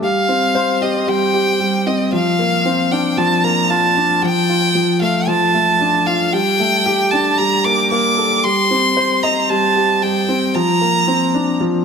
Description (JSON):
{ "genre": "electronica", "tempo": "114 BPM", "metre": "4/4", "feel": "straight", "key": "unclear", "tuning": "A4 = 440 Hz", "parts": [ { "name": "clear violin", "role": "melody", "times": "0.0-11.6 s", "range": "Eb5 to D6", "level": "-16 LUFS", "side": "right 1 dB", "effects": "digital delay" }, { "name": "dark upright piano", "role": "riff", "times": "0.0-11.8 s", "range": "F3 to Eb5", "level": "-17 LUFS", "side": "left 1 dB", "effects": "digital delay" } ], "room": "moderate echo chamber reverb, RT60 2.0 s", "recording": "none", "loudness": "-13 LUFS", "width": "side -6 dB against mid", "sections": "0.0-11.8 A section", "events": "drop 0.0-11.8", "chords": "0.0 C5; 2.1 Bbadd9; 4.2 Dm; 6.3 Gmadd9; 8.4 Cm; 10.5 Bbadd9", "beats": "| 0.02 0.55 1.07 1.60 | 2.13 2.65 3.18 3.71 | 4.23 4.76 5.29 5.81 | 6.34 6.86 7.39 7.92 | 8.44 8.97 9.49 10.02 | 10.55 11.07 11.60" }